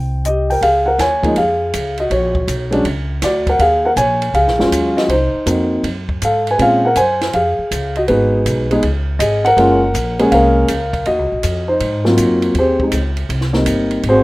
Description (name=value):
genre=jazz piano trio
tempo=161 BPM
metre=4/4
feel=swing 66% on 8ths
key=Db major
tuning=A4 = 440 Hz
part: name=dark upright piano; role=melody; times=0.0-14.2 s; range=F3 to Ab5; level=-14 LUFS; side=equal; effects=none
part: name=upright bass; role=bass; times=0.0-14.2 s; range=Gb1 to Bb2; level=-20 LUFS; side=equal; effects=none
part: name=compact cocktail drum kit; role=drums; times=0.2-14.2 s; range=hi-hat, kick drum, ride cymbal, snare drum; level=-25 LUFS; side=right 1 dB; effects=none
room=light reverb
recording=rough home demo mix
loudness=-13 LUFS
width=side -20 dB against mid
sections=0.6-12.6 A section; 12.6-14.2 B section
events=upright piano solo 12.6-14.2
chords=0.0 Abmaj7 (rootless); 0.6 Db; 2.1 Bbaug; 3.6 Ebm11; 5.1 Cm7b5; 5.8 N.C.; 6.6 Bbm9; 8.1 Abm7; 8.8 Db5; 9.6 Gbmaj7; 11.1 Ebm9; 11.8 Ab13; 12.6 Abmaj7